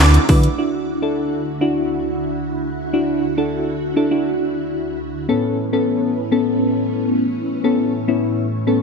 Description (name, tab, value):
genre	dance-pop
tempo	102 BPM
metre	4/4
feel	straight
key	D major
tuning	A4 = 437 Hz
part	soft electric-piano-like synth keys	accompaniment	0.0-8.8 s	B3 to B4	-19 LUFS	left 2 dB	chorus, sidechain pumping
part	ensemble organ-string	sustained chords	0.0-8.8 s	D2 to F#4	-22 LUFS	right 1 dB	phaser, ensemble chorus, sidechain pumping
part	sub bass with octave	bass	0.0-0.5 s	D2 to D3	-13 LUFS	equal	sidechain pumping
part	house drum kit	drums	0.0-0.6 s	handclaps, hi-hat, kick drum, snare drum	-15 LUFS	equal	overdrive, gated reverb
room	light reverb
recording	bright 1980s-style digital production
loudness	-17 LUFS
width	side -5 dB against mid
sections	0.6-8.8 A section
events	none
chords	0.0 Dadd9; 5.3 Aadd9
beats	| 0.58 1.17 1.76 2.35 | 2.94 3.52 4.11 4.70 | 5.29 5.88 6.46 7.05 | 7.64 8.23 8.82